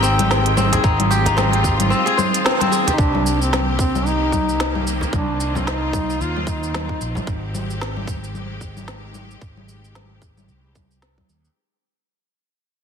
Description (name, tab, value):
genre	organic downtempo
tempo	112 BPM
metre	4/4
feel	swing 58% on 16ths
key	unclear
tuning	A4 = 439 Hz
part	dark duduk	melody	0.0-7.0 s	C4 to F4	-24 LUFS	equal	digital delay
part	clear studio string section	sustained chords	0.0-11.5 s	Eb3 to G5	-27 LUFS	left 3 dB	sidechain pumping
part	kora	arpeggios	0.0-4.4 s	C4 to C5	-20 LUFS	left 1 dB	digital delay
part	fretless electric bass	bass	0.0-11.5 s	Ab1 to Eb2	-23 LUFS	equal	wide subtle chorus, sidechain pumping
part	organic electronic drum kit	drums	0.0-11.5 s	congas, hi-hat, shaker, snare drum	-23 LUFS	equal	none
part	frame drum	percussion	0.7-7.2 s	none	-28 LUFS	right 2 dB	none
part	electronic kick drum	drums	0.8-11.3 s	none	-22 LUFS	equal	none
room	moderate lush hall reverb, RT60 2.0 s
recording	dense, heavily limited modern master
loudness	-17 LUFS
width	side -7 dB against mid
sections	0.0-3.0 A section; 3.0-11.6 B section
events	band accent 2.4; fade-out 3.0-11.6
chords	0.0 Abmaj7; 3.0 Cm7; 7.3 Abmaj7